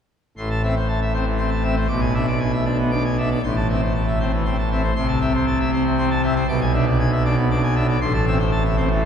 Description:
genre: classical, organ toccata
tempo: 118 BPM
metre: 3/4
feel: straight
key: A minor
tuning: A4 = 440 Hz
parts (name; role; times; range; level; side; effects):
- pipe organ, full organ; solo; 0.4-9.1 s; A1 to D6; -18 LUFS; equal; none
room: wet cathedral reverb, RT60 5.8 s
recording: heard from further back in the room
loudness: -18 LUFS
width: side -8 dB against mid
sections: 0.4-9.1 A section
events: none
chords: 0.4 Am; 1.9 E7/B; 3.4 Am; 5.0 Am/C; 6.5 E7/B; 8.0 Am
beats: | 0.37 0.89 1.40 | 1.91 2.42 2.93 | 3.44 3.95 4.45 | 4.96 5.46 5.97 | 6.48 6.99 7.50 | 8.01 8.52 9.03

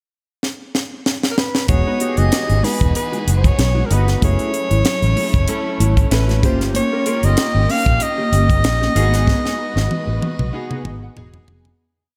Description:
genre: polished 1980s jazz-funk pop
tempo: 95 BPM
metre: 4/4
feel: swing 54% on 16ths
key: unclear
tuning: A4 = 438 Hz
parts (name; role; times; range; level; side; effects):
- tight funk drum kit; drums; 0.4-11.8 s; hi-hat, kick drum, snare drum, toms; -22 LUFS; equal; none
- breathy alto saxophone; melody; 1.3-11.2 s; A#4 to E#5; -24 LUFS; equal; slapback echo
- clear concert grand piano; accompaniment; 1.7-11.8 s; A3 to B5; -27 LUFS; equal; analog chorus
- warm studio string section; sustained chords; 1.7-11.8 s; E3 to B4; -33 LUFS; equal; none
- mellow electric guitar; riff; 1.7-11.7 s; G#3 to B4; -28 LUFS; equal; subtle chorus
- vintage muted fingered electric bass; bass; 1.7-11.7 s; E1 to B1; -19 LUFS; equal; none
room: light reverb, small room ambience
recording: none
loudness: -17 LUFS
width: mono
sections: 0.0-1.7 pickup bar; 1.7-11.8 pre-chorus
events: drum fill 0.4-1.7, 9.3-11.8; fade-out 9.3-11.8; grand piano fill 10.5-11.8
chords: 0.0 N.C.; 1.7 Emaj9; 4.2 F#m7; 6.4 D#7/G; 9.0 G#m7; 11.2 Emaj7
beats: 0.42 1.06 | 1.69 2.32 2.96 3.59 | 4.22 4.86 5.49 6.12 | 6.75 7.38 8.02 8.65 | 9.28 9.91 10.54 11.17

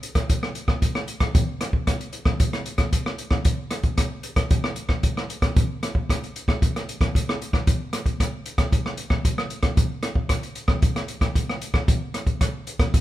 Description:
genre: samba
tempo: 114 BPM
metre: 4/4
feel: straight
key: none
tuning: none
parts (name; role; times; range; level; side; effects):
- open jazz drum kit; drums; 0.0-13.0 s; hi-hat, kick drum, rim click; -21 LUFS; equal; none
room: light reverb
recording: band playing live in one room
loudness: -21 LUFS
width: side -15 dB against mid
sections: 0.0-13.0 A section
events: none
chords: none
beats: 0.30 0.83 1.35 | 1.88 2.41 2.93 3.46 | 3.99 4.51 5.04 5.57 | 6.09 6.62 7.15 7.67 | 8.20 8.73 9.25 9.78 | 10.31 10.83 11.36 11.89 | 12.41 12.94

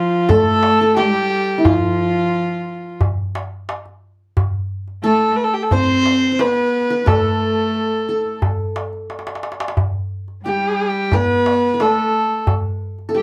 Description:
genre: Turkish makam ensemble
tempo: 89 BPM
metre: 4/4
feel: straight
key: unclear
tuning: A4 = 440 Hz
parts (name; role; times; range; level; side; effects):
- rich kamancheh; melody; 0.0-13.2 s; F4 to C5; -20 LUFS; equal; none
- qanun; second line; 0.0-13.2 s; E4-30c to C5; -25 LUFS; equal; none
- warm cello; second line; 0.0-13.2 s; F3 to C4; -24 LUFS; equal; none
- darbuka; percussion; 0.3-13.1 s; none; -23 LUFS; equal; none
room: moderate small room reverb, RT60 0.6 s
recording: none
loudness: -18 LUFS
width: mono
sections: 0.0-13.2 A section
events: drum fill 9.1-9.8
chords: none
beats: 0.29 0.97 | 1.65 2.33 3.00 3.68 | 4.36 5.04 5.71 6.39 | 7.07 7.75 8.42 9.10 | 9.78 10.45 11.13 11.81 | 12.48 13.16

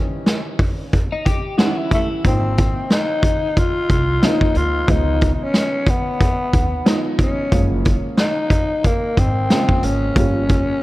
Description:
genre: hip hop, jazz-hop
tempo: 91 BPM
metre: 4/4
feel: swing 59% on 16ths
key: unclear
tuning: A4 = 440 Hz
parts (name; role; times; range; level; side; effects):
- growling tenor saxophone; melody; 0.0-10.8 s; A3 to F4; -22 LUFS; left 2 dB; analog delay
- dark upright piano; accompaniment; 0.0-10.8 s; Db3 to E4; -24 LUFS; right 1 dB; none
- vintage drum kit; drums; 0.3-10.7 s; hi-hat, kick drum, snare drum; -18 LUFS; equal; none
- twelve-string electric guitar; second line; 1.1-2.2 s; D#4 to G4; -27 LUFS; left 3 dB; lush chorus
- upright bass; bass; 2.2-10.6 s; Gb1 to Eb2; -21 LUFS; equal; none
room: small room reverb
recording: dark, warm production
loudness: -15 LUFS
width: side -17 dB against mid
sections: 0.0-10.8 A section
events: break 0.0-2.2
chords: 0.0 A7#11/E (rootless); 2.2 Ab6; 4.9 Db7; 7.5 Gbmaj9; 10.2 Gm7b5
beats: 0.27 0.93 1.59 | 2.25 2.90 3.56 4.22 | 4.88 5.54 6.20 6.86 | 7.52 8.18 8.84 9.50 | 10.16 10.82

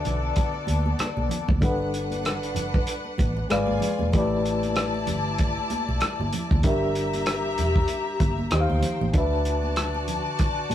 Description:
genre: lush 1970s-style soul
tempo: 96 BPM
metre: 4/4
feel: swing 58% on 16ths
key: D major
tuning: A4 = 440 Hz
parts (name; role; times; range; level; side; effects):
- warm studio string section; second line; 0.0-10.7 s; B3 to Bb5; -30 LUFS; left 3 dB; none
- reed electric piano; accompaniment; 0.0-10.7 s; D3 to F#5; -28 LUFS; left 2 dB; overdrive, fast tremolo
- vintage muted fingered electric bass; bass; 0.1-10.7 s; E1 to Eb2; -28 LUFS; right 1 dB; none
- warm soul drum kit; drums; 0.1-10.7 s; hi-hat, kick drum, rim click; -25 LUFS; equal; none
- congas; percussion; 0.1-10.7 s; none; -34 LUFS; right 3 dB; none
room: moderate studio reverb, RT60 0.6 s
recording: rough rehearsal-room recording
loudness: -22 LUFS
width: side -11 dB against mid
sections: 0.0-10.7 A section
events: none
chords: 0.0 D6; 1.6 Gmaj7; 3.5 G#dim7; 4.1 A9sus4; 6.6 Gm6; 8.5 Eb6; 9.1 D6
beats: 0.37 0.99 | 1.62 2.25 2.88 3.50 | 4.13 4.76 5.38 6.01 | 6.64 7.27 7.89 8.52 | 9.15 9.77 10.40

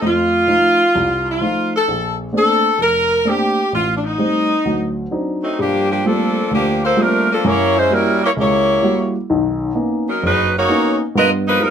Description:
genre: jazz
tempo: 129 BPM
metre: 4/4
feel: swing 65% on 8ths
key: unclear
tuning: A4 = 440 Hz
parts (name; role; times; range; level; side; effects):
- clear saxophone section; melody; 0.0-11.7 s; F3 to D#5; -15 LUFS; equal; none
- dark baby grand piano; accompaniment; 0.0-11.7 s; F1 to Gb4; -19 LUFS; equal; none
room: moderate club reverb, RT60 0.6 s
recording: none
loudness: -14 LUFS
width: side -8 dB against mid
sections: 0.0-5.6 A section; 5.6-11.7 B section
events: none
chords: 0.0 F7; 1.9 Bbmaj9; 3.7 Am7b5; 4.7 D7b9; 5.6 Gm11; 7.4 Gb7b9; 9.3 Bmaj9; 11.1 G7alt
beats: | 0.01 0.48 0.94 1.41 | 1.87 2.33 2.80 3.26 | 3.73 4.19 4.66 5.12 | 5.58 6.05 6.51 6.97 | 7.44 7.90 8.37 8.83 | 9.29 9.76 10.22 10.69 | 11.15 11.61

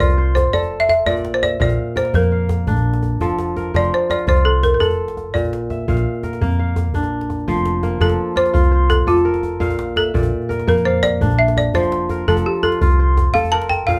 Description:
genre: west african traditional, West African string and xylophone music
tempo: 112 BPM (dotted quarters)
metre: 12/8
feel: straight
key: F major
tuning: A4 = 440 Hz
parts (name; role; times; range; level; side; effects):
- balafon; melody; 0.0-14.0 s; F4 to A5; -20 LUFS; equal; none
- kora; arpeggios; 0.0-14.0 s; Bb2 to F5; -24 LUFS; equal; none
- hollow-body short-scale fingered electric bass; bass; 0.0-14.0 s; F1 to F2; -22 LUFS; equal; none
- djembe; percussion; 0.0-14.0 s; none; -27 LUFS; equal; none
room: wet studio ambience, RT60 0.4 s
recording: band playing live in one room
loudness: -18 LUFS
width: mono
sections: 0.0-7.5 A section; 7.5-14.0 B section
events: balafon solo 7.5-14.0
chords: 0.0 F; 1.1 Bb; 3.2 F; 5.3 Bb; 7.5 F; 9.6 Bb; 11.7 F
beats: 0.00 0.53 | 1.07 1.60 2.14 2.67 | 3.21 3.74 4.28 4.81 | 5.34 5.88 6.41 6.94 | 7.48 8.01 8.54 9.08 | 9.61 10.14 10.68 11.21 | 11.74 12.28 12.81 13.34 | 13.88

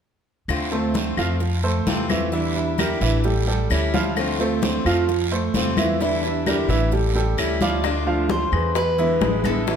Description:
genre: latin, Cuban son and guajira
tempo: 131 BPM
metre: 4/4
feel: straight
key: D minor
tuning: A4 = 440 Hz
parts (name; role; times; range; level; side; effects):
- picked steel-string acoustic guitar; accompaniment; 0.5-9.8 s; C3 to F4; -26 LUFS; left 3 dB; none
- upright bass; bass; 0.5-9.8 s; A1 to F2; -24 LUFS; equal; none
- claves; percussion; 0.5-9.7 s; none; -32 LUFS; left 6 dB; none
- congas; percussion; 0.5-9.8 s; none; -28 LUFS; left 3 dB; none
- guiro; percussion; 0.5-7.8 s; none; -32 LUFS; right 6 dB; none
- bright baby grand piano; arpeggios; 0.7-9.8 s; E3 to F5; -24 LUFS; right 4 dB; none
- Cuban tres; melody; 7.6-9.8 s; A4 to D5; -24 LUFS; left 1 dB; none
- bongos; percussion; 7.8-9.8 s; none; -29 LUFS; left 8 dB; none
room: moderate large studio reverb, RT60 1.3 s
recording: none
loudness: -19 LUFS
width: side -7 dB against mid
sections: 0.5-7.8 A section; 7.8-9.8 B section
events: none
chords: 0.5 Dm7; 1.4 Fmaj7; 2.3 Em7b5; 3.2 A7; 4.2 Dm7; 5.1 Fmaj7; 6.0 Em7b5; 6.9 A7; 7.8 Dm; 8.8 E7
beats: | 0.49 0.95 1.41 1.87 | 2.33 2.79 3.25 3.71 | 4.16 4.62 5.08 5.54 | 6.00 6.46 6.92 7.38 | 7.84 8.30 8.76 9.22 | 9.68

